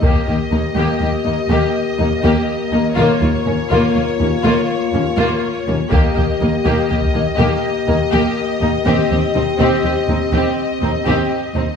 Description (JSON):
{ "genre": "cinematic, epic orchestral film score", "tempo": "82 BPM (dotted quarters)", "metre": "12/8", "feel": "straight", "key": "Eb mixolydian", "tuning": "A4 = 441 Hz", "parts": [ { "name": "warm symphonic violin section", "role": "melody", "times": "0.0-11.8 s", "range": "Db5 to Eb5", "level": "-24 LUFS", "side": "left 4 dB", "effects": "none" }, { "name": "dark symphonic violin section", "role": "second line", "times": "0.0-11.6 s", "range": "Db4 to G4", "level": "-24 LUFS", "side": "left 2 dB", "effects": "none" }, { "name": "rich studio viola section", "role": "accompaniment", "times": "0.0-11.6 s", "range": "Bb3 to C4", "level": "-21 LUFS", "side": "right 1 dB", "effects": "none" }, { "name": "dark French horn section", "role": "sustained chords", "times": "0.0-11.6 s", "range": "Bb3 to G4", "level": "-21 LUFS", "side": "left 6 dB", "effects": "none" }, { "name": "dark symphonic cello section", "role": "bass", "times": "0.0-11.6 s", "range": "Eb2", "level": "-22 LUFS", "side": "right 1 dB", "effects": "none" }, { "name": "warm symphonic double bass section", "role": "bass", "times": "0.0-11.6 s", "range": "Eb2", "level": "-21 LUFS", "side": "right 1 dB", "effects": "none" }, { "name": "solo taiko drums", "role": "drums", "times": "0.0-1.0, 5.9-7.2 s", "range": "none", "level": "-18 LUFS", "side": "left 1 dB", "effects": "none" } ], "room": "moderate scoring stage reverb, RT60 1.7 s", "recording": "studio reverb", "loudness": "-14 LUFS", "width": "side -6 dB against mid", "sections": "0.0-11.8 A section", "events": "none", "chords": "0.0 Eb; 3.0 Bbm/Eb; 5.9 Eb; 8.9 Cm/Eb", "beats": "| 0.03 0.76 1.50 2.24 | 2.97 3.71 4.44 5.18 | 5.91 6.65 7.38 8.12 | 8.85 9.59 10.32 11.06" }